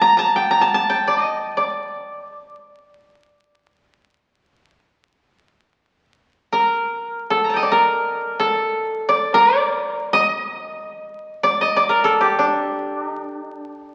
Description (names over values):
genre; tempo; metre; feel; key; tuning
japanese traditional, Japanese chamber music; free time; none; none; D miyako bushi; A4 = 440 Hz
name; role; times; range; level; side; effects
koto; solo; 0.0-13.9 s; D4 to Bb5; -20 LUFS; equal; none
room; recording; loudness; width
wet concert hall reverb, RT60 2.1 s; very old 78 rpm record, vinyl crackle; -19 LUFS; mono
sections
0.0-13.9 A section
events
slowing down 10.7-13.9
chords
none